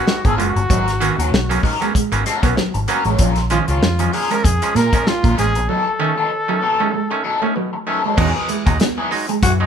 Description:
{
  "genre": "funk",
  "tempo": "96 BPM",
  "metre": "4/4",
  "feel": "swing 56% on 16ths",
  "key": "G# dorian",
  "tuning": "A4 = 440 Hz",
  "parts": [
    { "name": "clear trumpet", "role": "melody", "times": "0.0-7.6 s", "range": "E#4 to A#4", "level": "-21 LUFS", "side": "equal", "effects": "none" },
    { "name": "bright clav", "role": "stabs", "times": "0.0-9.7 s", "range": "G#2 to D#4", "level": "-24 LUFS", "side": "right 5 dB", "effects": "none" },
    { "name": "overdriven semi-hollow guitar", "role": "accompaniment", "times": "0.1-9.6 s", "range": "F#3 to C#5", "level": "-23 LUFS", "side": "left 4 dB", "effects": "wah, phaser" },
    { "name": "mellow electric guitar", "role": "riff", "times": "0.1-9.4 s", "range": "D#3 to B3", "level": "-24 LUFS", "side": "right 3 dB", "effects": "spring reverb" },
    { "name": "warm soul drum kit", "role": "drums", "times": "0.1-9.6 s", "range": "crash cymbal, hi-hat, kick drum, snare drum", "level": "-19 LUFS", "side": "left 1 dB", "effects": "none" },
    { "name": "vintage muted fingered electric bass", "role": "bass", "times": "0.2-9.7 s", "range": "F#1 to A#2", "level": "-20 LUFS", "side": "equal", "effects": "none" },
    { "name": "growling tenor saxophone", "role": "second line", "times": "9.4-9.5 s", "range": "F#4", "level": "-19 LUFS", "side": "left 2 dB", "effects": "none" }
  ],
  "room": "light reverb",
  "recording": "band playing live in one room",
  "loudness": "-15 LUFS",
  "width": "side -8 dB against mid",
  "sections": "0.0-8.2 A section; 8.2-9.7 B section",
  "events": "break 5.7-8.2",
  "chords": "0.0 G#m11; 3.2 A#m7; 5.7 B7; 8.2 Emaj9"
}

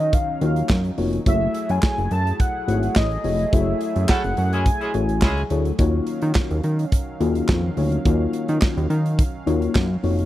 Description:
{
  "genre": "early-eighties boogie funk",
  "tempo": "106 BPM",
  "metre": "4/4",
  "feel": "straight",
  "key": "unclear",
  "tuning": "A4 = 440 Hz",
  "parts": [
    { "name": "warm velvety synth lead", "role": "melody", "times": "0.0-5.5 s", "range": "Eb5 to A5", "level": "-25 LUFS", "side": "right 1 dB", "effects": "chorus, slapback echo" },
    { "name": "brassy analog pad", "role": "sustained chords", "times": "0.0-10.3 s", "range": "Eb3 to F5", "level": "-31 LUFS", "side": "right 2 dB", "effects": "chorus" },
    { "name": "fat analog bass", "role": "bass", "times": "0.0-10.3 s", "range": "F1 to Eb3", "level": "-22 LUFS", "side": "equal", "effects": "none" },
    { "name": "modern studio drum kit", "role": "drums", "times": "0.0-10.3 s", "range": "handclaps, hi-hat, kick drum, snare drum", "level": "-20 LUFS", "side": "equal", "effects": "none" },
    { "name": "mellow FM electric piano", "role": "accompaniment", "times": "0.4-10.2 s", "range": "A3 to Db5", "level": "-25 LUFS", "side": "left 4 dB", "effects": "chorus" },
    { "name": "clear horn section", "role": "second line", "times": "4.1-5.4 s", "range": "Ab3 to A4", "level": "-29 LUFS", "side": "right 2 dB", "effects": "none" }
  ],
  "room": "little or no reverb",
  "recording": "dry, close 1970s-style studio recording",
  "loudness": "-18 LUFS",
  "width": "side -14 dB against mid",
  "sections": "0.0-10.3 A section",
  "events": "band accent 3.5-5.8",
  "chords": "0.0 Ebm9; 1.3 Gbm9; 5.8 Ebm9"
}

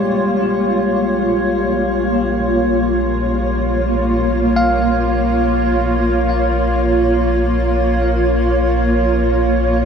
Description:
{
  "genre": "ambient",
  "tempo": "free time",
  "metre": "none",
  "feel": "none",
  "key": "Bb dorian",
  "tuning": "A4 = 441 Hz",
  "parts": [
    { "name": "granular cloud pad", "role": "sustained chords", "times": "0.0-9.8 s", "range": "Bb3 to Db5", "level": "-16 LUFS", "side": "equal", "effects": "built-in reverb, shimmer reverb" },
    { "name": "bell-like tine electric piano", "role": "arpeggios", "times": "0.0-9.8 s", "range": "G3 to F5", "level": "-22 LUFS", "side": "left 1 dB", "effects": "diffuse ambient delay, shimmer reverb" },
    { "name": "warm sub bass", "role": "bass", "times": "0.0-9.8 s", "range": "Bb1", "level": "-21 LUFS", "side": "equal", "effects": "none" },
    { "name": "bowed-like drone", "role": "drone", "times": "2.3-9.8 s", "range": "Bb3 to F4", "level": "-25 LUFS", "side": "equal", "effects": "built-in reverb" }
  ],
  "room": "wet huge ambient reverb, RT60 7.6 s",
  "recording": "tape saturation",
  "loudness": "-14 LUFS",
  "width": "side -6 dB against mid",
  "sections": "0.0-9.8 A section",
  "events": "none",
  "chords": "0.0 Bbm7"
}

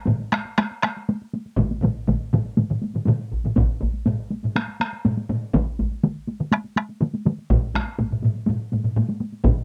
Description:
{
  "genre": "japanese traditional, taiko drum ensemble",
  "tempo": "122 BPM",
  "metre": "4/4",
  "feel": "straight",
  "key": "none",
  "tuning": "none",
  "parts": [
    { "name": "taiko ensemble", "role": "percussion", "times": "0.1-9.6 s", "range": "none", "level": "-27 LUFS", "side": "equal", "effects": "none" },
    { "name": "taiko ensemble", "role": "percussion", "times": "0.1-9.6 s", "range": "none", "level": "-26 LUFS", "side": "equal", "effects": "none" },
    { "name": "taiko ensemble", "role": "percussion", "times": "0.1-9.6 s", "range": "none", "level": "-26 LUFS", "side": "equal", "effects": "none" },
    { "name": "taiko ensemble", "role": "percussion", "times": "1.6-9.6 s", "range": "none", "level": "-26 LUFS", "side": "equal", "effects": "none" }
  ],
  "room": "moderate booth ambience, RT60 0.2 s",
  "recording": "dry, close 1970s-style studio recording",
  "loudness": "-24 LUFS",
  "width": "mono",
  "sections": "0.0-3.6 A section; 3.6-9.6 B section",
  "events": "speeding up 0.0-9.6",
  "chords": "none"
}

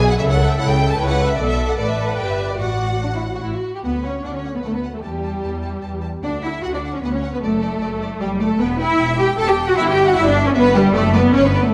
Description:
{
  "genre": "quick classical-period movement for string orchestra",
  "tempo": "152 BPM",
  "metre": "3/4",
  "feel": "straight",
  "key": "D major",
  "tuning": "A4 = 439 Hz",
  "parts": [
    { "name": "warm symphonic violin section", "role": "melody", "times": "0.0-11.6 s", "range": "D5 to A5", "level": "-30 LUFS", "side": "equal", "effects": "none" },
    { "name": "warm symphonic violin section", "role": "second line", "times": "0.0-11.7 s", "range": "D4 to A5", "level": "-27 LUFS", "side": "equal", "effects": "none" },
    { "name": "rich studio viola section", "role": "accompaniment", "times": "0.0-11.7 s", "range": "G3 to B4", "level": "-24 LUFS", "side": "equal", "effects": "none" },
    { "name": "rich studio cello section", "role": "bass", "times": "0.0-11.7 s", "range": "G2 to A4", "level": "-23 LUFS", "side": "equal", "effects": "none" },
    { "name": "rich symphonic double bass section", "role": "bass", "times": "0.0-11.7 s", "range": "E1 to E2", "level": "-25 LUFS", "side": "equal", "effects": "none" }
  ],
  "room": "moderate scoring stage reverb, RT60 1.6 s",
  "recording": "none",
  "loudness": "-19 LUFS",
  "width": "mono",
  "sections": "0.0-3.8 A section; 3.8-11.7 B section",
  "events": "none",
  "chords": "0.2 A/C#; 1.4 Bm7; 2.2 Em7/G; 2.6 D/A; 3.8 D; 5.0 A5/E; 6.2 D; 7.4 D/F#; 8.6 Em; 9.8 Em/G; 11.0 D/F#"
}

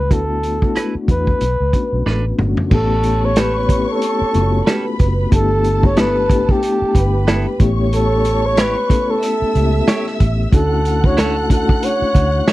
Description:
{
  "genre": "lush 1970s-style soul",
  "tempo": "92 BPM",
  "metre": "4/4",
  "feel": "swing 58% on 16ths",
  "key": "unclear",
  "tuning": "A4 = 440 Hz",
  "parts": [
    { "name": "breathy flugelhorn", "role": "melody", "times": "0.0-12.5 s", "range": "G4 to C#5", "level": "-19 LUFS", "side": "equal", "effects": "slapback echo" },
    { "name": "reed electric piano", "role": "accompaniment", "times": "0.0-12.5 s", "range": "G3 to A4", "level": "-21 LUFS", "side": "left 4 dB", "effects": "fast tremolo" },
    { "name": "vintage muted fingered electric bass", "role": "bass", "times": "0.0-12.4 s", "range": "F#1 to E2", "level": "-18 LUFS", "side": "equal", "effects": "none" },
    { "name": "vintage drum kit", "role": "drums", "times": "0.1-12.5 s", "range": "crash cymbal, hi-hat, kick drum, rim click, snare drum, toms", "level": "-16 LUFS", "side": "equal", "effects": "none" },
    { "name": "clean electric guitar", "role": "riff", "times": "0.8-12.5 s", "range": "B3 to C#5", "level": "-22 LUFS", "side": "right 3 dB", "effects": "none" },
    { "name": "dark studio string section", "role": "second line", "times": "2.7-12.5 s", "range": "A4 to F#6", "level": "-26 LUFS", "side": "right 2 dB", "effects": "none" }
  ],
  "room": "little or no reverb",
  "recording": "dry, close 1970s-style studio recording",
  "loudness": "-13 LUFS",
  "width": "side -17 dB against mid",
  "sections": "0.0-2.7 A section; 2.7-12.5 B section",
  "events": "drum fill 2.1-2.7",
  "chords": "0.1 D69; 1.4 Bm7; 2.7 A7; 5.3 G69; 7.6 A7; 10.5 Dmaj9"
}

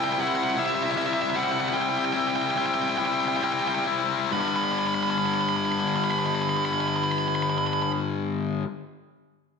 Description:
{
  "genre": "rock",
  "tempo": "43-53 BPM (dotted quarters)",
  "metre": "6/8",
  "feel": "straight",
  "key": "G major",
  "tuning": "A4 = 445 Hz",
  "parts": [
    { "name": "dark smooth lead guitar", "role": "melody", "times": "0.0-7.9 s", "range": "E5 to B5", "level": "-27 LUFS", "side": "right 6 dB", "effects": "overdrive, slapback echo" },
    { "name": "shimmering ambient pad", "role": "sustained chords", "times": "0.0-1.7 s", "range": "C4 to E5", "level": "-37 LUFS", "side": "right 2 dB", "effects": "chorus, built-in reverb" },
    { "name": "tight distorted guitar", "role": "riff", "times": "0.0-8.6 s", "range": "G2 to E4", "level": "-25 LUFS", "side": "left 6 dB", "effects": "distortion, slapback echo" }
  ],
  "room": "wet scoring stage reverb, RT60 1.5 s, digital ambience",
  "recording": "big arena sound",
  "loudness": "-23 LUFS",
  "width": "side -5 dB against mid",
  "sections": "0.0-4.3 A section; 4.3-7.1 B section",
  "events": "slowing down 0.0-4.3",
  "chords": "0.0 C; 4.3 G"
}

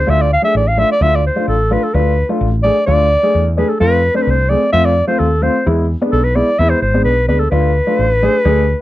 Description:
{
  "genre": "klezmer",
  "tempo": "129 BPM",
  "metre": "2/4",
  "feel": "straight",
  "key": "D dorian sharp4",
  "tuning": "A4 = 438 Hz",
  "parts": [
    { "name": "mellow clarinet", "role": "melody", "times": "0.0-8.8 s", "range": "A4 to F5", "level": "-15 LUFS", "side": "equal", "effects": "none" },
    { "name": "woody fretless electric bass", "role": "bass", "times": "0.0-8.7 s", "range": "G#1 to F2", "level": "-15 LUFS", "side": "equal", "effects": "none" },
    { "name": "dark upright piano", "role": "accompaniment", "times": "0.1-8.6 s", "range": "G#3 to G#4", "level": "-18 LUFS", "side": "left 1 dB", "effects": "none" }
  ],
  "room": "little or no reverb",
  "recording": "dry, close 1970s-style studio recording",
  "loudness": "-11 LUFS",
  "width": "side -15 dB against mid",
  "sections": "0.0-3.8 A section; 3.8-8.8 A section",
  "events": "none",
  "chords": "0.1 Dm; 3.8 F; 5.7 E; 7.5 Dm"
}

